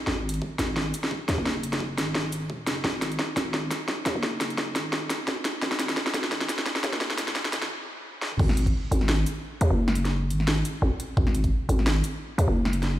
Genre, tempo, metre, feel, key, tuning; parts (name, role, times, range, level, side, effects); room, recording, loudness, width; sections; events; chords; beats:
half-time drum and bass; 173 BPM; 4/4; swing 55% on 16ths, half-time; A4 = 439 Hz
growling 808-style bass; bass; 0.1-13.0 s; D#1 to D#2; -26 LUFS; equal
drum and bass drum kit; drums; 0.1-12.9 s; crash cymbal, hi-hat, shaker, snare drum, toms; -27 LUFS; equal; overdrive
electronic kick drum; drums; 0.1-8.7, 11.2-11.5 s; -28 LUFS; equal; overdrive, high-pass filter on kick, high-pass filter on room
light reverb; played on a big sound system in a bare room, stone room reverb, high-pass filter; -24 LUFS; side -14 dB against mid
0.0-8.4 A section; 8.4-13.0 B section
build-up 0.0-8.4; drum fill 0.0-7.7, 8.2; filter sweep 0.0-8.4; stop 7.7-8.4; drop 8.4-13.0
| 0.07 0.42 0.77 1.11 | 1.46 1.81 2.15 2.50 | 2.85 3.19 3.54 3.89 | 4.23 4.58 4.93 5.27 | 5.62 5.97 6.32 6.66 | 7.01 7.36 7.70 8.05 | 8.40 8.74 9.09 9.44 | 9.78 10.13 10.48 10.82 | 11.17 11.52 11.86 12.21 | 12.56 12.90